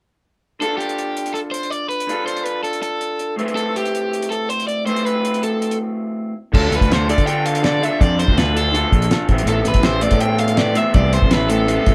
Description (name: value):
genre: indie rock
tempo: 163 BPM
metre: 4/4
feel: straight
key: unclear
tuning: A4 = 441 Hz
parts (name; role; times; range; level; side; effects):
- overdriven semi-hollow guitar; melody; 0.6-11.9 s; G4 to G5; -24 LUFS; equal; none
- electric guitar through a small old amp; riff; 0.6-11.9 s; A2 to B4; -24 LUFS; equal; none
- cloth-damped thuddy drum kit; drums; 0.6-11.9 s; crash cymbal, hi-hat, kick drum, snare drum; -22 LUFS; equal; none
- fuzz fingered electric bass; bass; 6.5-11.9 s; A1 to D3; -22 LUFS; equal; overdrive
room: light reverb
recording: band playing live in one room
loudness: -19 LUFS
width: mono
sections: 0.6-6.5 A section; 6.5-11.9 B section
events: break 5.8-6.5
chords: 0.6 Dm; 3.4 Amadd9; 6.5 Dm; 9.3 Amadd9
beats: | 0.61 0.98 1.35 1.72 | 2.09 2.46 2.83 3.20 | 3.57 3.94 4.31 4.68 | 5.05 5.42 5.79 6.16 | 6.53 6.89 7.26 7.63 | 8.00 8.37 8.73 9.10 | 9.47 9.84 10.21 10.57 | 10.94 11.31 11.68